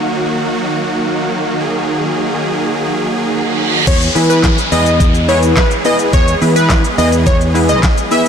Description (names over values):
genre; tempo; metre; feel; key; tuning
dance-pop; 106 BPM; 4/4; straight; unclear; A4 = 435 Hz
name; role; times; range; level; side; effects
funky polysynth comp; accompaniment; 0.0-8.3 s; A#3 to B4; -18 LUFS; left 1 dB; chorus, sidechain pumping
supersaw chords; sustained chords; 0.0-8.3 s; D#3 to G#4; -19 LUFS; right 1 dB; sidechain pumping
reverse cymbal and downlifter; sound effects; 3.3-8.3 s; none; -21 LUFS; right 2 dB; none
plucky unison lead; melody; 3.9-8.2 s; B4 to E5; -16 LUFS; equal; sidechain pumping, digital delay
fingered electric bass; bass; 3.9-7.8 s; E2 to E3; -15 LUFS; equal; sidechain pumping
pop drum kit; drums; 3.9-8.3 s; crash cymbal, handclaps, hi-hat, kick drum, shaker, snare drum; -15 LUFS; equal; soft clipping on snare
room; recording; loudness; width
light reverb, digital ambience; blown-out, overdriven recording, overdrive; -11 LUFS; side -7 dB against mid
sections
0.0-3.9 A section; 3.9-8.3 B section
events
reverse cymbal 3.3-3.9; drop 3.9-8.3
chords
0.0 D#m; 3.9 E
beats
0.47 1.04 | 1.61 2.17 2.74 3.31 | 3.87 4.44 5.00 5.57 | 6.13 6.70 7.27 7.83